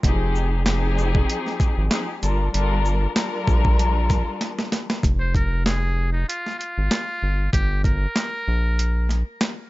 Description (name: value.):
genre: hip hop, boom-bap hip-hop.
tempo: 96 BPM.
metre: 4/4.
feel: swing 56% on 16ths.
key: F dorian.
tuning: A4 = 440 Hz.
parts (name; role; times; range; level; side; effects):
dark studio string section; accompaniment; 0.0-4.9 s; F3 to Bb4; -25 LUFS; left 3 dB; cassette tape, high-pass filter, low-pass filter.
round analog bass; bass; 0.0-9.2 s; F1 to Bb1; -21 LUFS; equal; none.
boom bap sampler-style drum kit; drums; 0.0-9.6 s; handclaps, hi-hat, kick drum, shaker, snare drum; -22 LUFS; equal; overdrive.
trumpet with metal mute; melody; 5.2-9.4 s; Eb4 to C5; -28 LUFS; equal; high-pass filter, low-pass filter.
room: digital ambience.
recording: nothing above 7.7 kHz.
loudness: -20 LUFS.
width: side -18 dB against mid.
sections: 0.0-5.0 A section; 5.0-9.7 B section.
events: drum fill 4.4-5.0.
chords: 0.0 Fm7; 2.2 Gm7; 5.0 Fm; 7.2 Gm.